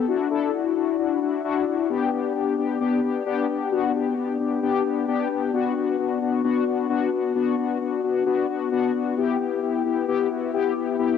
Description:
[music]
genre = pop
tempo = 132 BPM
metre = 4/4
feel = straight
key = G major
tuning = A4 = 440 Hz
[part]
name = mellow synth brass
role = solo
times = 0.0-11.2 s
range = B3 to A4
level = -21 LUFS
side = left 6 dB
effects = chorus, cassette tape, tape echo
[sound]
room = moderate spring reverb, RT60 1.6 s, digital ambience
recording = home recording on cassette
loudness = -21 LUFS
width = side -7 dB against mid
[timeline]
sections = 0.0-1.9 A section; 1.9-11.2 B section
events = none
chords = 0.1 Dadd9; 1.9 G; 5.5 Bm; 9.2 Em/B

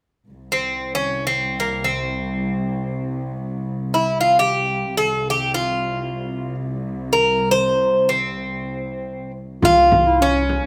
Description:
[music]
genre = Turkish makam ensemble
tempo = free time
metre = none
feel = none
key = C makam hicaz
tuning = A4 = 440 Hz
[part]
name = dark studio cello section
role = drone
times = 0.3-9.7 s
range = C2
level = -30 LUFS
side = equal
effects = none
[part]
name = Greek bouzouki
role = melody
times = 0.5-10.7 s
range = Bb3 to C5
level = -21 LUFS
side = equal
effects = none
[part]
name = dark clarinet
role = second line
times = 9.6-10.6 s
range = Db4 to F4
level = -23 LUFS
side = equal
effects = none
[part]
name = upright bass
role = bass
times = 9.6-10.6 s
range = C2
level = -26 LUFS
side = equal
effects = none
[part]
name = frame drum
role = percussion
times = 9.6-10.6 s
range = none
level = -26 LUFS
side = equal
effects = none
[sound]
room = moderate recital hall reverb, RT60 1.7 s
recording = none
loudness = -20 LUFS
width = mono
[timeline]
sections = 0.3-9.6 A section; 9.6-10.7 B section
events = none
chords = none

